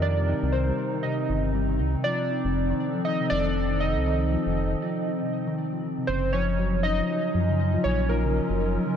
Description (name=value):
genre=IDM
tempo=119 BPM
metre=4/4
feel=swing 56% on 16ths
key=unclear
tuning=A4 = 441 Hz
part: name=warbly lo-fi synth keys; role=melody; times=0.0-9.0 s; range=Bb4 to Eb5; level=-29 LUFS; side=right 1 dB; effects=chorus, ping-pong delay
part: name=warbly tape-like pad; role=sustained chords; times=0.0-9.0 s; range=C3 to Bb4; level=-29 LUFS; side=equal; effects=chorus, built-in reverb
part: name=harp-like synth pluck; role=arpeggios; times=0.0-9.0 s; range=C3 to G3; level=-30 LUFS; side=left 3 dB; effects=chorus, cassette tape
part: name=round analog bass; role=bass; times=0.0-8.8 s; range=F1 to Gb2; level=-26 LUFS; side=equal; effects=none
part: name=bubbling stepped-filter texture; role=texture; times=6.4-9.0 s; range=Eb4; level=-36 LUFS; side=right 2 dB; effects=chorus, built-in reverb
room=light reverb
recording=none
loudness=-23 LUFS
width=side -8 dB against mid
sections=0.0-6.1 A section; 6.1-9.0 B section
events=break 5.1-6.1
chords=0.0 Cm7; 2.1 F7; 6.1 Gbmaj7